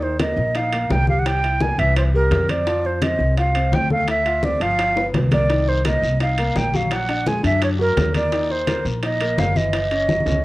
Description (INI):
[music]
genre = Afro-Cuban jazz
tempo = 170 BPM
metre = 4/4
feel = straight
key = unclear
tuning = A4 = 443 Hz
[part]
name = breathy concert flute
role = melody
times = 0.0-10.4 s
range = Bb4 to Ab5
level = -21 LUFS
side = right 1 dB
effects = cassette tape
[part]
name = dark concert grand piano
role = accompaniment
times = 0.0-10.4 s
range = Db3 to F5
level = -27 LUFS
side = left 2 dB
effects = cassette tape
[part]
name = upright bass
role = bass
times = 0.0-10.4 s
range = Gb1 to F#2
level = -22 LUFS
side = equal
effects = none
[part]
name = bongos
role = percussion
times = 0.0-10.4 s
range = none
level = -30 LUFS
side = left 4 dB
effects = none
[part]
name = congas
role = percussion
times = 0.0-10.4 s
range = none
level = -25 LUFS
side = left 1 dB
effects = none
[part]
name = timbales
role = percussion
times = 0.2-10.3 s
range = none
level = -31 LUFS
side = right 4 dB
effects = none
[part]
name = guiro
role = percussion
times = 5.5-10.4 s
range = none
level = -37 LUFS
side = left 3 dB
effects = none
[sound]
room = light reverb, studio reverb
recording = home recording on cassette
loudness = -17 LUFS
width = side -18 dB against mid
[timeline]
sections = 0.0-10.4 A section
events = drum fill 5.0-5.5, 10.1-10.4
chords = 0.0 Eb69; 1.3 C7; 2.7 F5; 4.1 Dm9; 4.8 G7; 5.5 Cm7; 6.9 Bbaug7; 8.3 Eb5; 9.7 Gb5